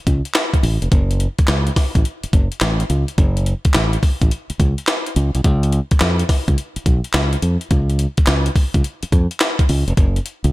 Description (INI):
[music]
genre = R&B, new jack swing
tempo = 106 BPM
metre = 4/4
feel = swing 66% on 16ths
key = F# minor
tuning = A4 = 440 Hz
[part]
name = modern bright fingered electric bass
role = bass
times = 0.1-10.5 s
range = E#1 to E#2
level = -17 LUFS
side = equal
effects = none
[part]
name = breakbeat sampler-style drum kit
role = drums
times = 0.1-10.5 s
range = handclaps, hi-hat, kick drum, snare drum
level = -16 LUFS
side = equal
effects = gated reverb
[sound]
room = little or no reverb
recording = none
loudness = -15 LUFS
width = side -18 dB against mid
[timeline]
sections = 0.0-10.0 A section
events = none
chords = none